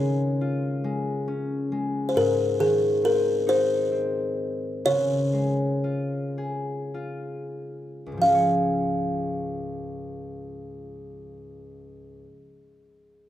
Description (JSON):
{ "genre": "children's music, lullaby", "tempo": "30-46 BPM (dotted quarters)", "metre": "6/8", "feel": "rubato", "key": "Db major", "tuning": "A4 = 440 Hz", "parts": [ { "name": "buzzing kalimba", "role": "melody", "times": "0.0-12.4 s", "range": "Ab4 to F5", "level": "-24 LUFS", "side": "equal", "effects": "none" }, { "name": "concert harp", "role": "accompaniment", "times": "0.0-12.5 s", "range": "Db2 to Db5", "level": "-28 LUFS", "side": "left 2 dB", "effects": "none" } ], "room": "light reverb", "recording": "rough home demo mix", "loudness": "-22 LUFS", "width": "side -12 dB against mid", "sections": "0.0-2.2 A section; 2.2-8.2 B section; 8.2-12.2 C section", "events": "slowing down 2.2-8.2", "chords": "0.0 Db; 2.2 Ab; 4.9 Db" }